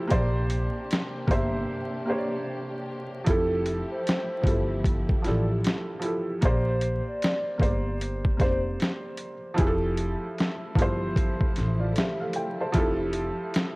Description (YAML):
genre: lo-fi hip hop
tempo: 76 BPM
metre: 4/4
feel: swing 60% on 16ths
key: F major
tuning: A4 = 441 Hz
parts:
  - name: felt-muted upright piano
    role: accompaniment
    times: 0.0-13.8 s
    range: F3 to A5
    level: -29 LUFS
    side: right 1 dB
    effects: low-pass filter
  - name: warm studio string section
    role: sustained chords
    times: 0.0-13.8 s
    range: C3 to G4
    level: -37 LUFS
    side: left 1 dB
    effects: low-pass filter
  - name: upright bass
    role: bass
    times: 0.1-13.3 s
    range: F1 to Bb1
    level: -29 LUFS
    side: equal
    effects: none
  - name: dusty soul sampler-style drum kit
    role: drums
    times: 0.1-13.8 s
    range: hi-hat, kick drum, snare drum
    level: -26 LUFS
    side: equal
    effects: overdrive
  - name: hollow clarinet-like synth lead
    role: melody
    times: 3.3-8.6 s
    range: A4 to D5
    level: -31 LUFS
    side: equal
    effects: chorus, phaser, low-pass filter
room: light reverb, studio reverb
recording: worn, warbling old tape, cassette tape, vinyl crackle, warbly pitch drift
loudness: -24 LUFS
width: side -25 dB against mid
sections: 0.0-13.8 A section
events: break 1.7-3.3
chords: 0.1 Bb69; 3.3 Fmaj9; 6.4 Bb69; 9.6 Fmaj9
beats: | 0.12 0.91 1.70 2.48 | 3.27 4.06 4.85 5.64 | 6.43 7.22 8.01 8.80 | 9.59 10.38 11.17 11.96 | 12.75 13.54